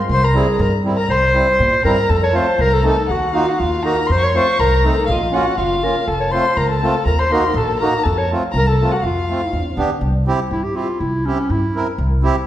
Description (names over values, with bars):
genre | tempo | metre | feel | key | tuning
klezmer | 121 BPM | 2/4 | straight | F phrygian dominant | A4 = 440 Hz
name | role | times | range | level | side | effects
warm clarinet | melody | 0.1-11.9 s | Db4 to Db5 | -19 LUFS | equal | none
dark violin | second line | 0.1-9.8 s | Eb5 to Db6 | -21 LUFS | left 2 dB | none
upright bass | bass | 0.1-12.3 s | F1 to Bb2 | -19 LUFS | equal | none
accordion | accompaniment | 0.3-12.4 s | G3 to Bb4 | -22 LUFS | right 2 dB | none
room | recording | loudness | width
wet recital hall reverb, RT60 1.4 s | recorded in a church or concert hall | -14 LUFS | side -12 dB against mid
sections
0.0-2.1 A section; 2.1-10.0 B section; 10.0-12.5 C section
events
none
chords
0.1 C; 2.1 F; 3.1 Ebm; 4.1 F; 5.1 Bbm; 6.1 F; 7.1 Ebm; 8.1 F; 9.5 G7; 10.0 C